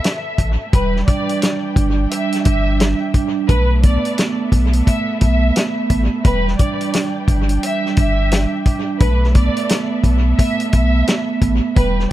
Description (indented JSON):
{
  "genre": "hip hop, boom-bap hip-hop",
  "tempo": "87 BPM",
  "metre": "4/4",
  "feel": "swing 62% on 16ths",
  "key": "E minor",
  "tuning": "A4 = 439 Hz",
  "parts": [
    { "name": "dark symphonic violin section", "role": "melody", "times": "0.0-12.1 s", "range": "B4 to E5", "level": "-23 LUFS", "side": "equal", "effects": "high-pass filter, low-pass filter, dub echo" },
    { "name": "rich studio string section", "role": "sustained chords", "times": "0.0-12.1 s", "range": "E3 to G5", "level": "-32 LUFS", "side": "left 2 dB", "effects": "high-pass filter, low-pass filter" },
    { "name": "warm soul drum kit", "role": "drums", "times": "0.0-12.1 s", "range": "hi-hat, kick drum, snare drum", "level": "-17 LUFS", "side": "equal", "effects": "dub echo" },
    { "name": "warm sub bass", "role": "bass", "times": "0.4-12.1 s", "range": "E1 to B1", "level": "-17 LUFS", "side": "equal", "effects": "none" },
    { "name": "vibraphone with soft mallets", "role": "accompaniment", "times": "0.7-12.1 s", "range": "G3 to D4", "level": "-20 LUFS", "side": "right 5 dB", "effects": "high-pass filter, low-pass filter, dub echo" }
  ],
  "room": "small room ambience",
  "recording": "echo-heavy mix",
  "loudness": "-14 LUFS",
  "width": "side -14 dB against mid",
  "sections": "0.0-12.1 A section",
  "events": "break 0.0-0.7",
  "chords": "0.0 B7sus4; 0.7 Em7; 3.5 B7sus4; 6.2 Em7; 9.0 B7sus4"
}